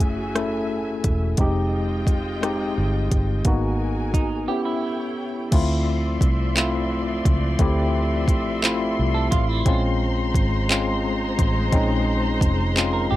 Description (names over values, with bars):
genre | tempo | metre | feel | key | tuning
slow six-eight R&B | 58 BPM (dotted quarters) | 6/8 | straight | unclear | A4 = 440 Hz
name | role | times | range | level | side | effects
tine electric piano | accompaniment | 0.0-13.2 s | Ab3 to A4 | -24 LUFS | left 2 dB | medium stereo tremolo
muted studio string section | sustained chords | 0.0-13.2 s | F3 to C6 | -30 LUFS | equal | none
vintage muted fingered electric bass | bass | 0.0-13.2 s | Fb1 to D2 | -24 LUFS | equal | none
smooth R&B drum kit | drums | 0.0-12.9 s | crash cymbal, handclaps, hi-hat, kick drum, rim click | -21 LUFS | equal | overdrive
semi-hollow electric guitar | second line | 4.1-5.5, 9.1-9.8, 12.9-13.2 s | Eb4 to Bb4 | -28 LUFS | right 8 dB | none
room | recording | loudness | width
little or no reverb | none | -19 LUFS | side -15 dB against mid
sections
0.0-5.5 A section; 5.5-13.2 B section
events
break 4.5-5.5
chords
0.0 Gbm9; 1.4 Fm9; 3.5 Abm9; 4.5 A7; 5.5 Dm9; 9.7 Bbm9